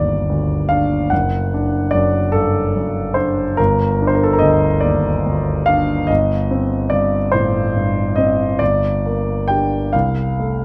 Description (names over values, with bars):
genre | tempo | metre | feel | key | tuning
classical, romantic nocturne for solo piano | 48 BPM (dotted quarters) | 12/8 | rubato | G minor | A4 = 440 Hz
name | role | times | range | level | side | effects
warm grand piano | solo | 0.0-10.6 s | F#1 to G5 | -17 LUFS | equal | none
room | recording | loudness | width
light reverb | close, detailed microphones | -17 LUFS | mono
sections
0.0-10.6 A section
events
none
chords
0.0 G5; 1.1 D/F#; 3.6 G5; 6.1 Cm/G; 8.6 Gm; 9.9 Am/C